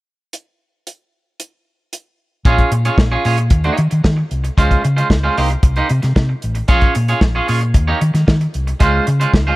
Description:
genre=disco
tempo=113 BPM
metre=4/4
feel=straight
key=Bb dorian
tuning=A4 = 440 Hz
part: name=warm soul drum kit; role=drums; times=0.3-9.5 s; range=hi-hat, kick drum, snare drum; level=-15 LUFS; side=equal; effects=none
part: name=twangy electric guitar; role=accompaniment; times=2.5-9.6 s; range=Ab3 to Db5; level=-18 LUFS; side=right 2 dB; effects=none
part: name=hollow-body short-scale fingered electric bass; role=bass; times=2.5-9.5 s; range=A1 to Eb3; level=-16 LUFS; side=equal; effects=none
room=small room ambience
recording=none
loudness=-13 LUFS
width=side -18 dB against mid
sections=0.3-2.5 A section; 2.5-9.6 B section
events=none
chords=0.3 N.C.; 2.5 Bbm7; 3.5 Eb7; 4.6 Dbmaj7; 5.4 Cm7; 6.7 Bbm7; 7.8 Eb7; 8.8 Dbmaj7

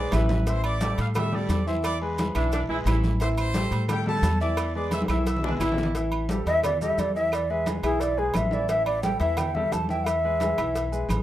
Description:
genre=latin, salsa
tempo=175 BPM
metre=4/4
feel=straight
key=A minor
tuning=A4 = 438 Hz
part: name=clear trumpet section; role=melody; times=0.0-5.7 s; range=G4 to E6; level=-32 LUFS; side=equal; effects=plate reverb
part: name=clear concert grand piano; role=accompaniment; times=0.0-11.2 s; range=E3 to E5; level=-30 LUFS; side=equal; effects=plate reverb
part: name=upright bass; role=bass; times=0.0-11.2 s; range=A1 to A2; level=-28 LUFS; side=equal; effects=none
part: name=claves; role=percussion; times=0.1-11.2 s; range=none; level=-42 LUFS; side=right 6 dB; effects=none
part: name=congas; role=percussion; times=0.1-11.2 s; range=none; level=-31 LUFS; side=equal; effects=none
part: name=cowbell and bongos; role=percussion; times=0.1-11.2 s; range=none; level=-38 LUFS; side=left 3 dB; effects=none
part: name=guiro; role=percussion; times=0.1-6.0 s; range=none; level=-47 LUFS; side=left 6 dB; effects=none
part: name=maracas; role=percussion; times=0.1-11.2 s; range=none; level=-46 LUFS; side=right 6 dB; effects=none
part: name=timbales and agogo bells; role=percussion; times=0.1-11.2 s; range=none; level=-36 LUFS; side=right 5 dB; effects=none
part: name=clear saxophone section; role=second line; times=2.3-3.1, 5.4-5.9 s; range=D4 to E4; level=-32 LUFS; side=right 1 dB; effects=none
part: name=mellow jazz flute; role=melody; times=6.5-11.1 s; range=G#4 to A5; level=-25 LUFS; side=equal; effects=plate reverb
room=moderate studio reverb, RT60 0.6 s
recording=rough home demo mix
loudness=-22 LUFS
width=side -13 dB against mid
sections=0.0-6.0 A section; 6.0-11.2 B section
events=drum fill 0.0-0.5, 4.9-6.0; flute solo 6.0-11.2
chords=0.5 Am7; 1.8 E7; 3.2 Am7; 4.6 E7; 6.0 A5; 7.3 E; 8.7 A5; 10.1 E

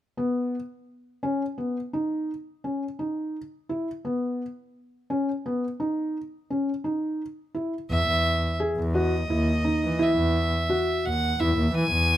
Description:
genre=contemporary instrumental, contemporary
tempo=171 BPM (eighths)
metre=11/8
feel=straight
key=E major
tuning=A4 = 439 Hz
part: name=felt-muted upright piano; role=arpeggios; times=0.2-11.6 s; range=B3 to G#4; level=-26 LUFS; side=equal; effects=none
part: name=clear violin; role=melody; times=7.9-12.2 s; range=D#5 to G#5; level=-26 LUFS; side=right 1 dB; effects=none
part: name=rich double bass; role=bass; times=7.9-12.2 s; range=D#2 to E3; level=-25 LUFS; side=equal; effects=none
room=little or no reverb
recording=close, detailed microphones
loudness=-24 LUFS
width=side -12 dB against mid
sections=0.2-7.9 A section; 7.9-12.2 B section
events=none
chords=0.2 N.C.; 7.9 Emaj7(no3)

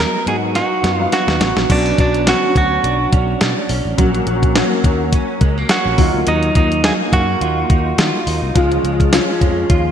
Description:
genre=1980s-style pop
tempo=105 BPM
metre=4/4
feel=swing 55% on 16ths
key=unclear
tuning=A4 = 441 Hz
part: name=direct-recorded clean electric guitar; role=melody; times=0.0-8.2 s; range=D4 to A#4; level=-19 LUFS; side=right 3 dB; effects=digital delay
part: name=dark concert grand piano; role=accompaniment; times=0.0-9.9 s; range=D3 to E#5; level=-20 LUFS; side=left 2 dB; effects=ensemble chorus
part: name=direct-recorded clean electric guitar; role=riff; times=0.0-9.9 s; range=F#3 to F#4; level=-23 LUFS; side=right 4 dB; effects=ensemble chorus, digital delay
part: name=sustaining fretless electric bass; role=bass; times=0.0-9.9 s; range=A1 to D#3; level=-20 LUFS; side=equal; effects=none
part: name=clean 12-bit digital drum machine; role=drums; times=0.3-9.8 s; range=crash cymbal, hi-hat, kick drum, snare drum, tambourine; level=-16 LUFS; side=equal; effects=gated reverb
room=moderate lush hall reverb, RT60 2.2 s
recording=bright 1980s-style digital production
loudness=-13 LUFS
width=side -8 dB against mid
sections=0.0-1.7 A section; 1.7-9.9 B section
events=drum fill 0.6-1.7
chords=0.0 B; 1.7 Bmadd9; 4.0 F#/A#; 6.0 D#madd9; 8.6 C#

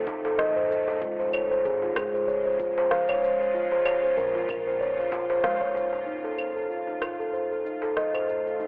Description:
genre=organic downtempo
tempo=95 BPM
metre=4/4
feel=swing 57% on 16ths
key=unclear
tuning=A4 = 440 Hz
part: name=bowed-like drone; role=sustained chords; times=0.0-8.7 s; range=Db3 to F4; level=-37 LUFS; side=equal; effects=built-in reverb, sidechain pumping
part: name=steel tongue drum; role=arpeggios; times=0.0-8.7 s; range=Eb4 to F5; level=-24 LUFS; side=equal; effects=low-pass filter, analog delay
part: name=upright bass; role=bass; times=0.0-8.7 s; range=F1 to Db2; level=-45 LUFS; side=equal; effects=none
part: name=electronic kick drum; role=drums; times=0.1-5.7 s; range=none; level=-43 LUFS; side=equal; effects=none
part: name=electronic shaker, rim click and claves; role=drums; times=0.1-8.7 s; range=none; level=-32 LUFS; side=equal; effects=none
part: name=darbuka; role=percussion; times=0.1-8.3 s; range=none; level=-39 LUFS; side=equal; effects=none
room=moderate lush hall reverb, RT60 2.0 s, small room ambience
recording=dry, gritty hardware recording, telephone sound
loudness=-24 LUFS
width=side -31 dB against mid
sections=0.0-6.1 A section; 6.1-8.7 B section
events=band accent 5.4-5.8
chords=0.0 F7; 1.0 Dbmaj7; 3.5 Bbmadd9; 6.1 F7

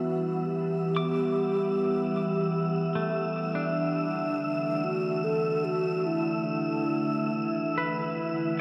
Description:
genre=ambient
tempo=75 BPM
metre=4/4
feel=straight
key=unclear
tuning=A4 = 440 Hz
part: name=mellow hollow wooden-headed alto flute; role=melody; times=0.0-8.1 s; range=D4 to A4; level=-32 LUFS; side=equal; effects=tape echo
part: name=glassy FM pad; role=sustained chords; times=0.0-8.6 s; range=D3 to F#5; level=-33 LUFS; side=equal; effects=ensemble chorus, built-in reverb
part: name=semi-hollow electric guitar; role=arpeggios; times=0.0-8.6 s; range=A3 to D6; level=-38 LUFS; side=equal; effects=tape echo
part: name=analog drone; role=drone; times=1.1-8.6 s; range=E3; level=-39 LUFS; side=equal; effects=chorus
part: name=wind-like tuned noise texture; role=texture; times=0.0-8.6 s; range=E5 to E6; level=-36 LUFS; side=equal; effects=built-in reverb
room=wet huge ambient reverb, RT60 8.1 s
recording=none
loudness=-28 LUFS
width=mono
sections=0.0-8.6 A section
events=none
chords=0.0 Em; 3.6 D

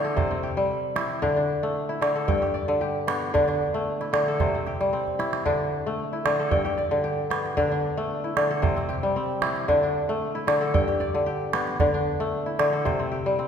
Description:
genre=west african traditional, West African string and xylophone music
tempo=114 BPM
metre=4/4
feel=straight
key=unclear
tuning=A4 = 440 Hz
part: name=kora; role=arpeggios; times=0.0-13.5 s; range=G2 to G5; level=-23 LUFS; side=left 1 dB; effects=none
part: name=calabash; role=percussion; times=0.2-13.0 s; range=none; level=-29 LUFS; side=right 4 dB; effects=none
room=wet scoring stage reverb, RT60 1.5 s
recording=recorded in a church or concert hall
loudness=-22 LUFS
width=side -7 dB against mid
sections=0.0-13.5 A section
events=drum fill 5.1-5.5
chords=0.2 C; 1.2 D5; 2.3 G; 3.3 D5; 4.4 C; 5.5 D5; 6.5 G; 7.6 D5; 8.6 C; 9.7 D5; 10.7 G; 11.8 D5; 12.9 C

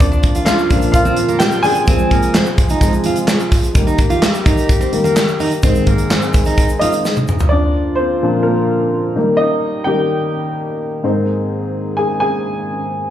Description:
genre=piano-driven pop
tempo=128 BPM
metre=4/4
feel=straight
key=unclear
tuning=A4 = 436 Hz
part: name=warm upright piano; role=accompaniment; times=0.0-13.1 s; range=Ab2 to Ab5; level=-17 LUFS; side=left 1 dB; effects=slapback echo
part: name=mellow brass ensemble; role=sustained chords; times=0.0-13.1 s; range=C3 to Ab4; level=-23 LUFS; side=right 1 dB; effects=none
part: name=modern studio drum kit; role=drums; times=0.0-7.5 s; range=handclaps, hi-hat, kick drum, snare drum, toms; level=-15 LUFS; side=equal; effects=none
part: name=egg shaker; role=percussion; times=0.0-7.5 s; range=none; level=-37 LUFS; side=left 1 dB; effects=none
part: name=picked steel-string acoustic guitar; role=riff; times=0.1-6.9 s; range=Bb3 to F4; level=-21 LUFS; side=right 4 dB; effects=slapback echo
room=light reverb, studio ambience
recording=live gig heard through the venue's PA, club reverb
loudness=-13 LUFS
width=side -11 dB against mid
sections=0.0-7.5 A section; 7.5-13.1 B section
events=upright piano solo 0.0-7.5, 7.5-13.1; drum fill 7.0-7.5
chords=0.0 Bb; 1.9 Fm; 3.8 Eb; 5.6 Ab; 7.5 Bbadd9; 9.2 Eb; 11.0 Abadd9

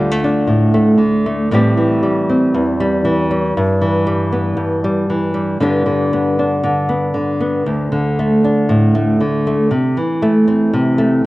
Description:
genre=folk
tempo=117 BPM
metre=4/4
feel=straight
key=D dorian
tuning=A4 = 435 Hz
part: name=nylon-string guitar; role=solo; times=0.0-11.3 s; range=D2 to G4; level=-13 LUFS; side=equal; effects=none
room=moderate scoring stage reverb, RT60 2.0 s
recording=worn, warbling old tape, cassette tape, warbly pitch drift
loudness=-13 LUFS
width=side -18 dB against mid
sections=0.0-7.6 A section; 7.6-11.3 A section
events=none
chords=0.0 Dm; 1.5 Am7; 3.6 Em/G; 5.6 G; 7.6 D5; 9.7 Am/C

